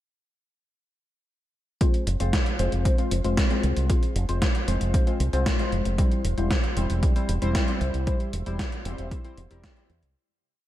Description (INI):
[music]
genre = italo disco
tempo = 115 BPM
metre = 4/4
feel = straight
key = F harmonic minor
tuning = A4 = 444 Hz
[part]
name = chorused polysynth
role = stabs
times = 1.8-9.9 s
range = G3 to C5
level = -29 LUFS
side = left 2 dB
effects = shimmer reverb
[part]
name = electronic kick drum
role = drums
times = 1.8-9.7 s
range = none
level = -24 LUFS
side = equal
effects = none
[part]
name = gated 80s digital drum machine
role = drums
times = 1.8-10.1 s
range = hi-hat, snare drum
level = -31 LUFS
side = equal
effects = gated reverb, gated reverb snare, overdrive
[part]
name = fingered electric bass with an envelope filter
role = bass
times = 2.1-10.1 s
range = E1 to E2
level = -26 LUFS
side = equal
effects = tube saturation
[sound]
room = light reverb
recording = dark, warm production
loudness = -22 LUFS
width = side -14 dB against mid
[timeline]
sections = 1.8-10.2 verse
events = filter sweep on analog polysynth 1.8-10.2; fade-out 7.4-10.2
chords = 1.8 Fm; 6.0 C/E